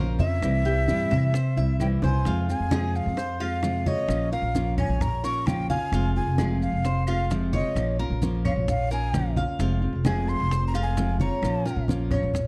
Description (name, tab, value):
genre	latin, Cuban son and guajira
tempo	131 BPM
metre	4/4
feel	straight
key	F minor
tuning	A4 = 442 Hz
part	nylon-string guitar	accompaniment	0.0-12.4 s	C3 to C5	-32 LUFS	equal	none
part	Cuban tres	arpeggios	0.0-12.5 s	F4 to F5	-36 LUFS	equal	tape echo
part	upright bass	bass	0.0-12.5 s	F1 to C3	-28 LUFS	equal	none
part	breathy jazz flute	melody	0.2-11.9 s	Eb5 to Db6	-33 LUFS	equal	none
part	bongos	percussion	0.2-12.5 s	none	-35 LUFS	equal	none
part	congas	percussion	0.2-12.5 s	none	-33 LUFS	equal	none
part	maracas	percussion	0.2-12.5 s	none	-48 LUFS	equal	none
part	claves	percussion	0.4-12.3 s	none	-47 LUFS	equal	none
room	light reverb, studio reverb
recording	dark, warm production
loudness	-25 LUFS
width	mono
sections	0.0-2.3 A section; 2.3-12.5 B section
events	drum fill 2.0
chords	0.4 C; 2.3 Fm; 4.1 Bbm; 5.9 Fm; 7.8 Bbm; 9.6 Fm; 11.4 Bbm